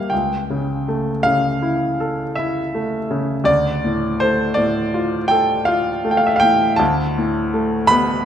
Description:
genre	classical, romantic nocturne for solo piano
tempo	54 BPM (dotted quarters)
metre	9/8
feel	rubato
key	unclear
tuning	A4 = 440 Hz
part	warm grand piano	solo	0.0-8.2 s	C#2 to B5	-16 LUFS	equal	none
room	wet concert hall reverb, RT60 1.9 s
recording	none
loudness	-16 LUFS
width	side -9 dB against mid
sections	0.0-8.2 A section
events	none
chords	0.1 A7/C#; 3.5 Dm; 6.8 Bm7/D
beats	| 0.12 1.25 2.37 | 3.48 4.60 5.69 | 6.80 7.90

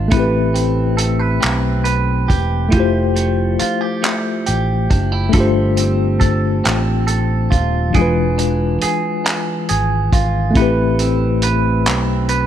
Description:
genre	slow six-eight R&B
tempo	46 BPM (dotted quarters)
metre	6/8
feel	straight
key	A minor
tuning	A4 = 441 Hz
part	clean electric guitar	second line	0.0-12.5 s	E3 to B4	-22 LUFS	right 6 dB	slapback echo
part	tine electric piano	accompaniment	0.0-12.5 s	E3 to C5	-19 LUFS	left 4 dB	medium stereo tremolo
part	fingered electric bass	bass	0.0-12.5 s	D#1 to B1	-18 LUFS	equal	none
part	cloth-damped thuddy drum kit	drums	0.1-12.5 s	handclaps, hi-hat, kick drum	-19 LUFS	right 1 dB	none
room	small room ambience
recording	none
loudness	-14 LUFS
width	side -10 dB against mid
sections	0.0-12.5 A section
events	none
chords	0.1 Am9; 2.7 Fmaj9; 5.3 G9sus4; 7.9 E7b9; 10.6 Am9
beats	| 0.12 1.42 | 2.73 4.03 | 5.34 6.64 | 7.95 9.25 | 10.55 11.86

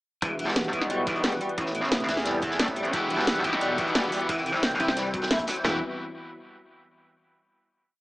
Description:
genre	dark technical drum and bass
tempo	177 BPM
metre	4/4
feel	straight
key	E minor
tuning	A4 = 440 Hz
part	sweeping resonant pad	sustained chords	0.2-5.8 s	C3 to G5	-31 LUFS	equal	chorus, sidechain pumping
part	clean electric guitar	arpeggios	0.2-5.8 s	E3 to E4	-32 LUFS	left 1 dB	ensemble chorus, sidechain pumping, tape echo
part	metallic wobble bass	bass	0.2-5.8 s	E1 to E2	-29 LUFS	equal	chorus, tube saturation, sidechain pumping
part	crunchy breakbeat drum kit	drums	0.2-5.6 s	hi-hat, snare drum	-36 LUFS	equal	high-pass filter on hats, high-pass filter on snare, high-pass filter on room
part	drum and bass drum kit	drums	0.2-5.7 s	kick drum, snare drum, toms	-35 LUFS	equal	none
part	drum and bass drum kit	drums	0.2-5.6 s	hi-hat, snare drum	-27 LUFS	equal	none
part	distorted electric guitar	stabs	2.9-5.8 s	C4 to B4	-31 LUFS	equal	overdrive, tape echo
part	pulsing pluck wobble bass	bass	4.8-5.5 s	C2	-33 LUFS	equal	chorus, tube saturation
room	moderate digital room reverb, RT60 1.0 s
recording	small speaker sound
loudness	-24 LUFS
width	side -19 dB against mid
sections	0.2-5.6 drop; 5.6-7.0 final chord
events	drop 0.2-5.6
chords	0.2 Emadd9; 1.6 Amadd9; 2.9 Emadd9; 4.3 C; 5.6 Emadd9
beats	| 0.22 0.56 0.90 1.24 | 1.58 1.92 2.26 2.60 | 2.93 3.27 3.61 3.95 | 4.29 4.63 4.97 5.31 | 5.65

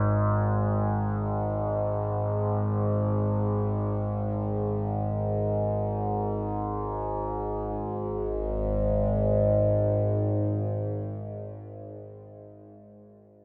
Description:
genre	ambient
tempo	free time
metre	none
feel	none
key	unclear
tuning	A4 = 440 Hz
part	overtone-sweeping drone	drone	0.0-11.5 s	G#1 to G#2	-28 LUFS	equal	chorus, built-in reverb
room	wet huge ambient reverb, RT60 7.2 s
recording	none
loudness	-28 LUFS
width	mono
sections	0.0-7.7 A section; 7.7-12.0 B section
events	none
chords	none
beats	free time

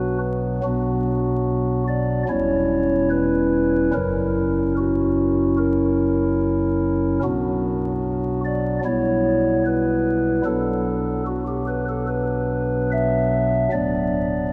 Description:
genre	classical, chorale-style piece for pipe organ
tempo	73 BPM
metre	4/4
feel	rubato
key	B minor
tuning	A4 = 440 Hz
part	pipe organ, stopped flute	solo	0.0-14.5 s	D1 to E5	-21 LUFS	equal	none
room	wet cathedral reverb, RT60 4.3 s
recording	vinyl crackle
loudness	-21 LUFS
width	mono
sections	0.6-14.5 A section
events	none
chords	0.0 Bm; 2.3 C#dim/E; 3.9 F#7; 7.2 Bm; 8.8 Em/B; 10.5 Bm; 13.7 Bm/D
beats	| 0.64 1.47 2.29 3.11 | 3.94 4.77 5.58 6.41 | 7.24 8.04 8.84 9.65 | 10.45 11.26 12.08 12.92 | 13.72 14.52

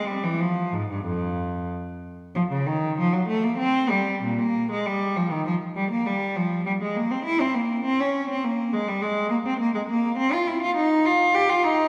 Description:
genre	classical, baroque-style suite movement for unaccompanied cello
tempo	88-104 BPM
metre	3/4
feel	rubato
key	F minor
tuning	A4 = 441 Hz
part	rich cello	solo	0.0-11.9 s	F2 to G4	-24 LUFS	equal	none
room	wet scoring stage reverb, RT60 2.0 s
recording	heard from further back in the room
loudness	-24 LUFS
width	mono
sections	0.0-2.4 A section; 2.4-11.9 A section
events	none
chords	none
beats	| 0.40 1.05 1.70 | 2.35 2.97 3.58 | 4.22 4.86 5.46 | 6.05 6.65 7.25 | 7.84 8.43 9.01 | 9.59 10.18 10.76 | 11.34

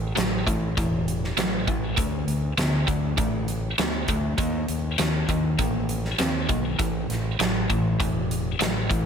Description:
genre	blues rock power trio and southern rock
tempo	100 BPM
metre	4/4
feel	straight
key	unclear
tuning	A4 = 440 Hz
part	overdriven electric guitar	riff	0.0-9.1 s	A2 to C4	-25 LUFS	equal	none
part	growling fingered electric bass	bass	0.0-9.1 s	E1 to D#2	-29 LUFS	equal	overdrive
part	huge arena drum kit	drums	0.2-9.1 s	hi-hat, kick drum, snare drum	-28 LUFS	equal	none
room	little or no reverb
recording	none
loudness	-22 LUFS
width	side -7 dB against mid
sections	0.0-9.1 A section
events	none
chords	0.0 A5; 2.0 D5; 4.4 D#5; 6.8 A5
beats	0.17 0.78 1.38 | 1.98 2.58 3.19 3.79 | 4.39 4.99 5.60 6.20 | 6.80 7.40 8.01 8.61

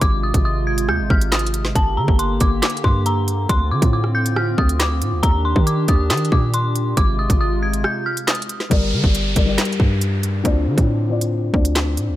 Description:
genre	hip hop, drill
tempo	138 BPM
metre	4/4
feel	half-time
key	G minor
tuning	A4 = 440 Hz
part	dark detuned synth bell	melody	0.0-8.5 s	A5 to Ab6	-24 LUFS	left 2 dB	chorus, digital delay
part	hollow soft pad	sustained chords	0.0-8.7 s	C3 to G4	-25 LUFS	right 1 dB	chorus
part	hard-hitting 808-style bass	bass	0.0-12.2 s	G1 to Eb3	-20 LUFS	equal	none
part	drill drum kit	drums	0.0-12.1 s	handclaps, hi-hat, kick drum, rim click, snare drum	-18 LUFS	equal	none
part	felt-muted upright piano	accompaniment	8.7-12.2 s	D3 to D5	-22 LUFS	left 4 dB	low-pass filter
part	downlifter	sound effects	8.7-12.2 s	none	-28 LUFS	equal	none
room	digital ambience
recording	none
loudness	-16 LUFS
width	side -14 dB against mid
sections	0.0-8.7 A section; 8.7-12.2 B section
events	break 7.8-8.7; filter sweep on felt piano 8.7-12.2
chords	0.0 Ab6; 1.8 Gm; 3.5 Dm7; 5.2 Ebmaj7; 7.0 Ab6; 8.7 Gm; 10.4 Dm7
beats	| 0.01 0.45 0.89 1.32 | 1.75 2.19 2.62 3.06 | 3.49 3.93 4.36 4.80 | 5.23 5.67 6.10 6.54 | 6.97 7.41 7.84 8.28 | 8.71 9.15 9.58 10.02 | 10.45 10.88 11.32 11.75

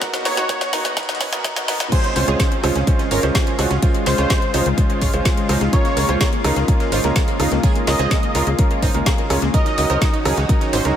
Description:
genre	progressive house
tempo	126 BPM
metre	4/4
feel	straight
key	Db major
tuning	A4 = 440 Hz
part	lush unison pad	sustained chords	0.0-11.0 s	Db2 to Gb4	-26 LUFS	left 1 dB	chorus, sidechain pumping
part	analog pluck	arpeggios	0.0-10.9 s	Ab3 to C5	-25 LUFS	equal	chorus, sidechain pumping, tape echo
part	bright grand piano	stabs	0.0-11.0 s	Gb3 to Db5	-24 LUFS	right 3 dB	sidechain pumping, tape echo
part	breakbeat sampler-style drum kit	drums	0.0-11.0 s	hi-hat, snare drum	-35 LUFS	left 1 dB	none
part	deep house drum kit	drums	0.0-10.9 s	crash cymbal, hi-hat, rim click, snare drum	-24 LUFS	left 1 dB	none
part	electronic kick drum	drums	0.0-10.6 s	none	-18 LUFS	equal	none
part	wide unison lead	melody	0.3-10.2 s	C5 to Eb5	-26 LUFS	equal	tape echo
part	tight sequencer bass	bass	2.2-10.9 s	Ab1 to Db2	-21 LUFS	equal	sidechain pumping
room	light reverb, digital ambience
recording	high-pass filter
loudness	-16 LUFS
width	side -10 dB against mid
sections	0.0-1.9 A section; 1.9-11.0 B section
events	build-up 0.0-1.9; drum fill 0.0-1.9; drop 1.9-11.0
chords	0.0 Cbmaj7/Db; 1.9 Dbmaj7; 5.7 Bbm7; 9.5 Ebm7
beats	| 0.02 0.49 0.97 1.45 | 1.92 2.40 2.87 3.35 | 3.83 4.30 4.78 5.25 | 5.73 6.21 6.68 7.16 | 7.63 8.11 8.59 9.06 | 9.54 10.02 10.49

